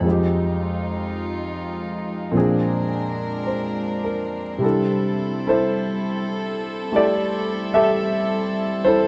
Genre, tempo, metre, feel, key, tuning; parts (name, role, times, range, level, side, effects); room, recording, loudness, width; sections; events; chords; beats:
jazz ballad; 52 BPM; 4/4; swing 69% on 8ths; C major; A4 = 440 Hz
clear concert grand piano; accompaniment; 0.0-9.1 s; F2 to E5; -23 LUFS; equal
warm chamber string section; sustained chords; 0.0-9.1 s; G3 to Bb4; -29 LUFS; equal
light reverb; dark, warm production; -23 LUFS; mono
0.0-9.1 A section
0.1 Fm7; 2.3 Bb9; 4.6 C6
| 0.05 1.20 2.34 3.49 | 4.64 5.78 6.93 8.08